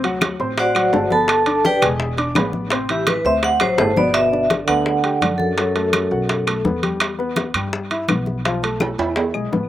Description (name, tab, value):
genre	Afro-Cuban jazz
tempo	168 BPM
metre	4/4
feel	straight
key	G major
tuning	A4 = 439 Hz
part	warm baby grand piano	accompaniment	0.0-9.7 s	C3 to D6	-24 LUFS	left 2 dB	slapback echo
part	upright bass	bass	0.0-9.7 s	E1 to G2	-28 LUFS	equal	none
part	congas	percussion	0.0-9.7 s	none	-27 LUFS	left 1 dB	none
part	timbales	percussion	0.0-9.3 s	none	-24 LUFS	right 5 dB	none
part	bongos	percussion	0.2-9.7 s	none	-25 LUFS	left 3 dB	none
part	claves	percussion	0.2-9.5 s	none	-27 LUFS	left 6 dB	none
part	vibraphone with medium hard mallets	melody	0.6-6.8 s	F#4 to A5	-18 LUFS	equal	slapback echo
part	breathy trombone	second line	3.8-6.8 s	F#2 to D3	-23 LUFS	right 4 dB	slapback echo
room	little or no reverb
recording	recorded outdoors, with no room sound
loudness	-16 LUFS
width	side -12 dB against mid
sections	0.0-4.1 A section; 4.1-9.7 B section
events	vibraphone solo 0.0-4.1; drum fill 3.6-4.1, 8.8-9.7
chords	0.0 D7; 1.3 G; 2.0 E7; 2.7 Am; 3.4 D7; 4.1 Gmaj7; 5.6 F#m; 6.3 B5; 7.0 Em; 8.4 Fmaj7#11/B; 9.2 E